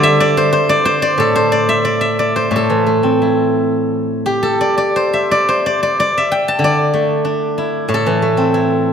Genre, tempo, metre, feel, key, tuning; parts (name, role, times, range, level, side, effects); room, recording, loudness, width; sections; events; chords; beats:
chinese traditional; 86-95 BPM; 4/4; rubato; D shang mode; A4 = 442 Hz
steel-string zither; solo; 0.0-8.9 s; A2 to A5; -12 LUFS; equal
wet concert hall reverb, RT60 2.5 s; -13 LUFS; side -7 dB against mid
0.0-8.9 A section
0.53 | 1.18 1.84 2.52 3.21 | 3.89 4.57 5.26 5.94 | 6.60 7.25 7.90 8.54